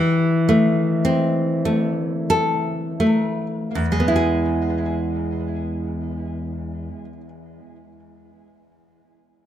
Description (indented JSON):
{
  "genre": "romantic piece for solo classical guitar",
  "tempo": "39-58 BPM",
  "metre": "3/4",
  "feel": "rubato",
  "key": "E major",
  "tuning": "A4 = 441 Hz",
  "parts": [
    { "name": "nylon-string guitar", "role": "solo", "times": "0.0-7.3 s", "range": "E2 to A4", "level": "-19 LUFS", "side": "equal", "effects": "tape echo" }
  ],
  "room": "light reverb",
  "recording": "close, detailed microphones",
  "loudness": "-19 LUFS",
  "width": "side -10 dB against mid",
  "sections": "0.0-3.7 A section; 3.7-7.9 B section",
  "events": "slowing down 0.0-3.7",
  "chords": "0.0 Am/E; 3.7 E"
}